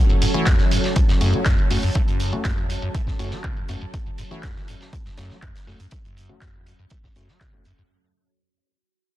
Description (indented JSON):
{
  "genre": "acid house",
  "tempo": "121 BPM",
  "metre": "4/4",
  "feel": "straight",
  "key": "F# minor",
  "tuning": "A4 = 440 Hz",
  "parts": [
    { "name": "string machine, full ensemble", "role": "sustained chords", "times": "0.0-7.9 s", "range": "F#3 to A5", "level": "-29 LUFS", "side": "equal", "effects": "ensemble chorus, sidechain pumping" },
    { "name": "granular cloud pad", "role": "texture", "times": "0.1-7.9 s", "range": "F#4 to A5", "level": "-37 LUFS", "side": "right 1 dB", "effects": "none" },
    { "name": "liquid acid bass", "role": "riff", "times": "0.1-7.8 s", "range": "E2 to A3", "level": "-26 LUFS", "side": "equal", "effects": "wide subtle chorus, sidechain pumping" },
    { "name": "punchy analog drum machine", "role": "drums", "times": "0.1-7.9 s", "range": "handclaps, hi-hat", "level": "-30 LUFS", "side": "right 1 dB", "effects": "low-pass filter on hats, low-pass filter on snare, low-pass filter on perc, low-pass filter on room" },
    { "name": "vintage drum kit", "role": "drums", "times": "0.2-7.8 s", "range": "hi-hat, snare drum", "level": "-36 LUFS", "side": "right 1 dB", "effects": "high-pass filter on hats, high-pass filter on snare, high-pass filter on room" },
    { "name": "percussive organ stab", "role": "stabs", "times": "0.3-7.7 s", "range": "A3 to F#4", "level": "-32 LUFS", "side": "left 2 dB", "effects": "chorus, tape echo" },
    { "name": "electronic kick drum", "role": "drums", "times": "0.5-7.5 s", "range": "none", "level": "-21 LUFS", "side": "equal", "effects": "none" }
  ],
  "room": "light reverb",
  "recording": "dense, heavily limited modern master",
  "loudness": "-19 LUFS",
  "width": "side -14 dB against mid",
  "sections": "0.0-7.9 A section",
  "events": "fade-out 0.0-7.9; filter sweep on synth stab 0.0-7.9",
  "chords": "0.0 F#m",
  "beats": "0.47 0.96 1.46 | 1.95 2.45 2.94 3.44 | 3.94 4.43 4.93 5.42 | 5.92 6.42 6.91 7.41"
}